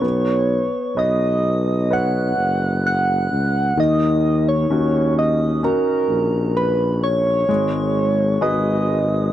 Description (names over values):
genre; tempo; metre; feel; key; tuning
pop ballad; 64 BPM; 4/4; straight; B major; A4 = 440 Hz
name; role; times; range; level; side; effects
soft struck synth lead; melody; 0.0-9.3 s; A#4 to F#5; -20 LUFS; right 1 dB; chorus
clear concert grand piano; accompaniment; 0.0-9.3 s; D#3 to D#5; -23 LUFS; left 3 dB; none
warm tuba; bass; 0.0-9.3 s; F#1 to D#2; -20 LUFS; right 1 dB; none
room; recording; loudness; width
little or no reverb; dry, close 1970s-style studio recording, faint mains hum; -16 LUFS; side -12 dB against mid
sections
0.0-9.3 A section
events
none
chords
0.0 Badd9; 3.8 D#m7; 7.5 G#m7